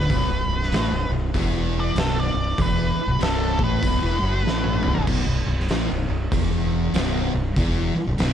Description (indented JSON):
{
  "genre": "stoner and doom metal",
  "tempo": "96 BPM",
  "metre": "4/4",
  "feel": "swing 62% on 8ths",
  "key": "B minor",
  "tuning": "A4 = 445 Hz",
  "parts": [
    { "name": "octave-fuzz lead guitar", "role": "melody", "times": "0.0-5.0 s", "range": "A4 to D5", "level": "-27 LUFS", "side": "equal", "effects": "distortion, ping-pong delay" },
    { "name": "thick fuzz guitar", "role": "riff", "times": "0.0-8.3 s", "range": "B1 to A3", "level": "-24 LUFS", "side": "equal", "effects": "distortion" },
    { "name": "fuzz fingered electric bass", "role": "bass", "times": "0.0-8.3 s", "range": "B0 to A1", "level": "-25 LUFS", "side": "equal", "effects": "overdrive" },
    { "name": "oversized low-tuned drum kit", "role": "drums", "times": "0.0-8.3 s", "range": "crash cymbal, hi-hat, kick drum, snare drum, toms", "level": "-26 LUFS", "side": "equal", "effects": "none" }
  ],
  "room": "little or no reverb",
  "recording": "dark, warm production",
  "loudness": "-20 LUFS",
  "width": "side -9 dB against mid",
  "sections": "0.0-5.1 A section; 5.1-8.3 B section",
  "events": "lead electric guitar solo 0.0-5.1; drum fill 4.5-5.1",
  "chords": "0.0 Bm; 5.1 N.C.",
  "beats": "| 0.10 0.72 1.34 1.96 | 2.58 3.21 3.83 4.45 | 5.07 5.70 6.32 6.94 | 7.57 8.19"
}